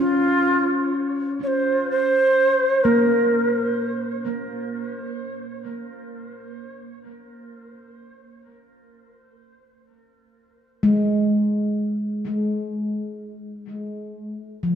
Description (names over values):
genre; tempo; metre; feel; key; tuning
ambient; free time; none; none; Bb minor; A4 = 442 Hz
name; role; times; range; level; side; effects
breathy shakuhachi; melody; 0.0-3.8 s; F4 to Db5; -21 LUFS; right 1 dB; diffuse ambient delay
handpan; arpeggios; 0.0-6.1, 10.8-14.8 s; F3 to Db4; -23 LUFS; equal; diffuse ambient delay
room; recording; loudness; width
wet concert hall reverb, RT60 2.4 s; none; -19 LUFS; side -8 dB against mid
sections
0.0-14.8 A section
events
fade-out on handpan 0.0-14.8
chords
0.0 Bbmadd9; 5.7 N.C.